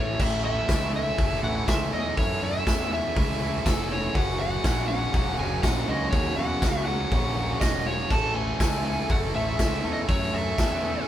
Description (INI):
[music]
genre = garage rock duo or trio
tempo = 121 BPM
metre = 4/4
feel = straight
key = unclear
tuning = A4 = 440 Hz
[part]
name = overdriven slide guitar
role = melody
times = 0.0-11.0 s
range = A4 to A5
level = -30 LUFS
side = left 1 dB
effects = none
[part]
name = biting overdriven guitar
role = riff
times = 0.0-11.1 s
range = F#2 to A4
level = -29 LUFS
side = right 1 dB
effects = none
[part]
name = growling fingered electric bass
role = bass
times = 0.0-11.0 s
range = E1 to F#2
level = -31 LUFS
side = equal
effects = overdrive
[part]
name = raw garage drum kit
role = drums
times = 0.2-10.7 s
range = crash cymbal, hi-hat, kick drum, snare drum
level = -27 LUFS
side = equal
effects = none
[part]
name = tambourine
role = percussion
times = 0.7-10.7 s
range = none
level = -40 LUFS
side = left 8 dB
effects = none
[sound]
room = moderate studio reverb, RT60 0.6 s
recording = band playing live in one room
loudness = -23 LUFS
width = side -12 dB against mid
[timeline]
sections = 0.2-11.1 A section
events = none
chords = 0.2 A; 4.1 F#; 8.1 A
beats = | 0.20 0.69 1.18 1.68 | 2.17 2.67 3.16 3.65 | 4.15 4.64 5.14 5.63 | 6.13 6.62 7.12 7.62 | 8.11 8.61 9.10 9.60 | 10.09 10.59